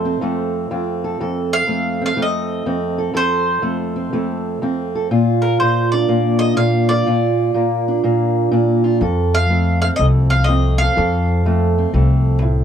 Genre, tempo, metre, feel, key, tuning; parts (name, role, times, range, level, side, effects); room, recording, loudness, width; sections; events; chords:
acoustic country blues, solo or duo; 123 BPM; 4/4; swing 67% on 8ths; F major; A4 = 440 Hz
mandolin; melody; 0.0-12.4 s; Bb4 to F5; -20 LUFS; equal
fingerpicked steel-string acoustic guitar; accompaniment; 0.0-12.6 s; F2 to A4; -17 LUFS; right 1 dB
upright bass; bass; 9.0-12.6 s; C2 to F2; -15 LUFS; left 1 dB
little or no reverb; dry, close 1970s-style studio recording; -15 LUFS; side -8 dB against mid
0.0-12.6 A section
0.0 F; 5.1 Bb; 9.0 F